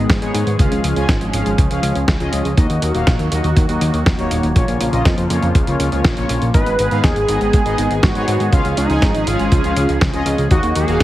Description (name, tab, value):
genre	italo disco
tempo	121 BPM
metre	4/4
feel	straight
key	G# dorian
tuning	A4 = 440 Hz
part	lush unison pad	sustained chords	0.0-11.0 s	C#3 to G#4	-22 LUFS	equal	chorus, phaser
part	fat analog bass	bass	0.0-11.0 s	D#1 to G#2	-20 LUFS	equal	none
part	dusty soul sampler-style drum kit	drums	0.1-11.0 s	hi-hat, snare drum	-22 LUFS	equal	none
part	electronic kick drum	drums	0.1-11.0 s	none	-16 LUFS	equal	none
part	analog synth brass	stabs	0.2-11.0 s	A#3 to G#5	-23 LUFS	left 2 dB	chorus
part	wide unison lead	melody	6.5-11.0 s	D#4 to B4	-20 LUFS	right 1 dB	wide subtle chorus, cassette tape, ping-pong delay
room	light reverb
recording	heavily compressed radio sound, multiband compression, vinyl crackle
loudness	-14 LUFS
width	side -14 dB against mid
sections	0.0-11.0 A section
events	none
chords	0.0 G#m; 0.6 C#; 2.6 D#m; 4.6 A#m; 6.5 G#m; 8.5 C#; 10.5 D#m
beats	0.10 | 0.59 1.09 1.58 2.08 | 2.58 3.07 3.57 4.06 | 4.56 5.05 5.55 6.05 | 6.54 7.04 7.53 8.03 | 8.53 9.02 9.52 10.01 | 10.51 11.00